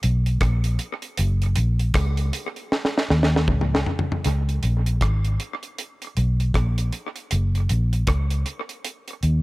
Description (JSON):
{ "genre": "roots reggae", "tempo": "78 BPM", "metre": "4/4", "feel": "swing 61% on 16ths", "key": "unclear", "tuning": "A4 = 440 Hz", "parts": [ { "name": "vintage muted fingered electric bass", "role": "bass", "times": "0.0-9.4 s", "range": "Gb1 to Eb2", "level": "-20 LUFS", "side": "equal", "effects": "none" }, { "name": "deep reggae drum kit", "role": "drums", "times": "0.0-9.4 s", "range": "hi-hat, kick drum, rim click, snare drum, toms", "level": "-25 LUFS", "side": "equal", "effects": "analog delay" } ], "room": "little or no reverb", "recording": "none", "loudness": "-20 LUFS", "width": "side -20 dB against mid", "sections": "0.0-4.2 A section; 4.2-9.4 B section", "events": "drum fill 2.7-4.2", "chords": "none" }